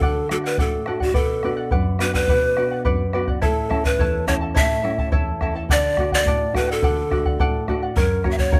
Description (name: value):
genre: andean folk, Andean ensemble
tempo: 106 BPM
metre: 2/4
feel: straight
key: unclear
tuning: A4 = 440 Hz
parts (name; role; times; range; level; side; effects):
- breathy large pan pipes; melody; 0.0-8.6 s; F#4 to E5; -24 LUFS; equal; none
- charango; accompaniment; 0.0-8.6 s; E4 to A5; -29 LUFS; equal; none
- nylon-string guitar; accompaniment; 0.0-8.6 s; E2 to F#4; -28 LUFS; equal; none
- bombo; percussion; 0.0-8.6 s; none; -25 LUFS; equal; none
room: little or no reverb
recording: close, detailed microphones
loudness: -21 LUFS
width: mono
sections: 0.0-3.4 A section; 3.4-8.6 B section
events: none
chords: 0.0 D; 1.2 Bm; 3.4 A; 5.7 D; 8.0 F#